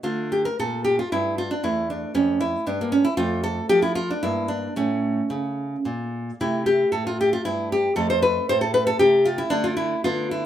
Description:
classical, baroque-style dance for nylon-string guitar; 107-119 BPM; 3/4; rubato; D minor, A minor from 6.4 s; A4 = 444 Hz
nylon-string guitar; solo; 0.0-10.5 s; E2 to C5; -20 LUFS; equal
moderate stone room reverb, RT60 0.9 s; band playing live in one room; -20 LUFS; side -10 dB against mid
0.0-10.5 A section
0.0 D5; 1.6 A5/E; 3.2 F; 4.2 Em7b5/G; 4.8 A; 6.4 Am; 8.0 Fadd9(#11); 9.5 D5

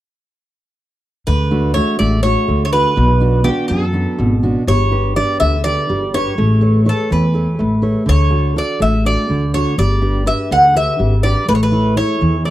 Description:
greek folk, Greek bouzouki band; 247 BPM (eighths); 7/8; straight; D major; A4 = 435 Hz
Greek bouzouki; melody; 1.3-12.5 s; G4 to F#5; -18 LUFS; equal
fingerpicked steel-string acoustic guitar; accompaniment; 1.3-12.5 s; B2 to C#5; -17 LUFS; right 1 dB
upright bass; bass; 1.3-12.5 s; G1 to F#2; -17 LUFS; equal
small room ambience; dry, close 1970s-style studio recording; -13 LUFS; side -14 dB against mid
1.3-12.5 A section
1.3 D; 3.0 Bm; 4.7 G; 6.4 Aadd9; 8.1 D; 9.8 G; 11.5 A

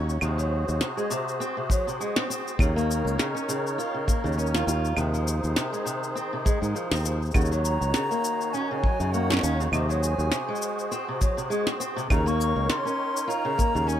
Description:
folktronica; 101 BPM; 4/4; swing 56% on 16ths; A4 = 439 Hz
musette accordion; sustained chords; 0.0-14.0 s; Eb3 to Db5; -31 LUFS; right 1 dB; stereo widening
fingerpicked steel-string acoustic guitar; arpeggios; 0.0-14.0 s; C3 to F4; -30 LUFS; equal; ping-pong delay
modern bright fingered electric bass; bass; 0.0-14.0 s; Db2 to Ab2; -26 LUFS; equal; tube saturation
electronic cabasa, claves and snare drum; drums; 0.1-14.0 s; -30 LUFS; left 1 dB
kick drum; drums; 1.7-13.7 s; -24 LUFS; equal
bright reedy baroque flute; melody; 7.3-14.0 s; Eb5 to Db6; -30 LUFS; left 1 dB; ping-pong delay
small room ambience; rough home demo mix; -23 LUFS; side -10 dB against mid
0.0-14.0 A section
0.2 Ab7/Eb; 2.6 Bbm; 5.0 Fm7/Eb; 7.3 Ebm7; 9.7 Ab7/Eb; 12.1 Bbm

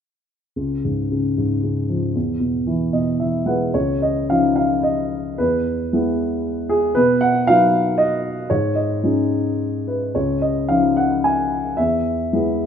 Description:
classical, lyrical solo piano; 106-118 BPM; 3/4; rubato; A4 = 440 Hz
dark baby grand piano; solo; 0.6-12.7 s; Db2 to Ab5; -17 LUFS; equal
moderate recital hall reverb, RT60 1.6 s; minimal, uncompressed stereo recording; -17 LUFS; side -8 dB against mid
0.6-3.7 A section; 3.7-12.7 B section
grand piano fill 2.7-3.7
0.6 Db; 2.1 E; 3.7 Dbadd9; 5.4 E; 7.0 Cb; 8.5 Absus4; 10.1 Dbadd9; 11.8 E

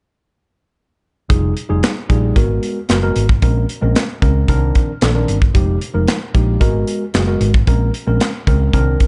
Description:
early-eighties boogie funk; 113 BPM; 4/4; straight; F minor; A4 = 439 Hz
tine electric piano; accompaniment; 1.3-9.1 s; Eb3 to Bb4; -22 LUFS; equal; overdrive, lush chorus
hollow-body short-scale fingered electric bass; bass; 1.3-9.0 s; F1 to Db2; -19 LUFS; equal; tube saturation
modern studio drum kit; drums; 1.3-9.1 s; handclaps, hi-hat, kick drum, snare drum; -19 LUFS; equal
studio reverb; dark, warm production, nothing above 11.0 kHz; -16 LUFS; mono
1.3-9.1 A section
1.3 Fm9; 2.4 Abm9; 3.4 Bbm9; 4.5 Cm9; 5.5 Fm9; 6.6 Abm9; 7.7 Bbm9

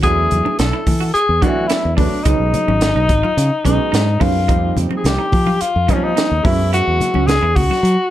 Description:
electric jazz fusion; 108 BPM; 4/4; straight; A4 = 440 Hz
mellow tenor saxophone; melody; 0.0-8.1 s; Db4 to A4; -18 LUFS; left 2 dB; slapback echo
clear baby grand piano; accompaniment; 0.0-7.3 s; F3 to F#4; -24 LUFS; right 5 dB
clean electric guitar; stabs; 0.0-7.9 s; C4 to F#4; -26 LUFS; right 8 dB; lush chorus
fingered electric bass; bass; 0.0-8.0 s; Ab1 to Gb3; -18 LUFS; equal
crisp fusion drum kit; drums; 0.0-8.0 s; hi-hat, kick drum, snare drum; -20 LUFS; right 1 dB
congas; percussion; 0.3-7.8 s; -24 LUFS; left 3 dB
light reverb; dark, warm production; -13 LUFS; side -13 dB against mid
0.0-8.1 A section
0.0 E9sus4; 2.3 Db9sus4; 4.5 F9sus4; 6.4 Gb9sus4

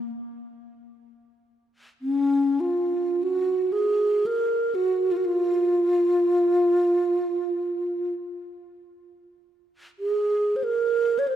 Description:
world meditative, free-time meditation music; free time; Bb minor; A4 = 442 Hz
breathy mellow alto flute; solo; 0.0-11.4 s; Bb3 to Db5; -22 LUFS; right 1 dB; diffuse ambient delay
wet church reverb, RT60 2.9 s; -21 LUFS; side -10 dB against mid
0.0-11.4 A section

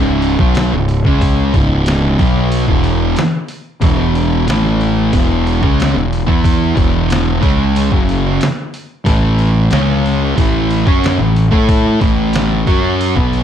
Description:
stoner and doom metal; 92 BPM; 4/4; straight; C# minor; A4 = 439 Hz
thick fuzz guitar; riff; 0.0-13.4 s; C#2 to A4; -14 LUFS; equal; distortion
fuzz fingered electric bass; bass; 0.0-13.4 s; C#1 to A2; -17 LUFS; equal; overdrive
trip hop sampler-style drum kit; drums; 0.2-13.4 s; hi-hat, kick drum, snare drum; -17 LUFS; equal
little or no reverb; dark, warm production; -11 LUFS; side -9 dB against mid
0.0-13.4 A section
0.0 C#m; 3.8 E5; 4.5 A5; 5.1 E5; 9.1 A5; 9.7 C#5; 10.4 A5

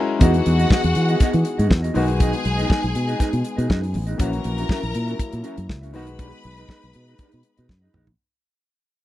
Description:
disco; 120 BPM; 4/4; straight; A4 = 441 Hz
warm baby grand piano; accompaniment; 0.0-8.2 s; D#3 to A#4; -28 LUFS; left 4 dB
mellow French horn section; sustained chords; 0.0-8.2 s; E3 to G#4; -31 LUFS; left 2 dB
clear studio string section; second line; 0.2-7.9 s; F#4 to B5; -29 LUFS; left 3 dB
mellow electric guitar; accompaniment; 0.2-8.1 s; B3 to E5; -28 LUFS; right 3 dB
fingered electric bass; bass; 0.2-8.1 s; A1 to E3; -21 LUFS; equal
damped 70s drum kit; drums; 0.2-8.2 s; hi-hat, kick drum, snare drum, toms; -18 LUFS; equal
little or no reverb; dry, close 1970s-style studio recording; -18 LUFS; side -14 dB against mid
0.2-8.2 A section
band accent 0.0; fade-out 0.2-8.2; drum fill 7.7-8.2
0.2 Emaj9; 1.9 B6; 4.2 F#7/A#; 5.9 B6

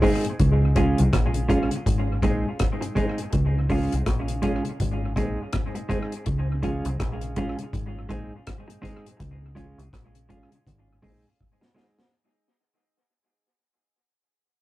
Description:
roots reggae; 82 BPM; 4/4; swing 59% on 16ths; Db major; A4 = 441 Hz
mellow tonewheel organ; accompaniment; 0.0-11.8 s; Ab2 to Db4; -32 LUFS; left 1 dB; chorus vibrato, slow rotary speaker, dub echo
semi-hollow electric guitar; accompaniment; 0.0-12.0 s; Ab3 to Ab4; -28 LUFS; right 1 dB; dub echo
deep reggae drum kit; drums; 0.0-12.1 s; hi-hat, kick drum, rim click, snare drum; -27 LUFS; equal
deep dub fingered electric bass; bass; 0.4-11.2 s; Ab1 to Db2; -25 LUFS; equal
wet booth ambience, RT60 0.2 s; rough rehearsal-room recording, warm saturation; -22 LUFS; side -16 dB against mid
0.4-12.1 A section
fade-out 0.4-12.1; drum fill 11.4-12.1
0.4 Db; 1.9 Ab; 3.3 Db; 4.8 Ab; 6.3 Db; 7.7 Ab; 9.2 Db; 10.7 Ab

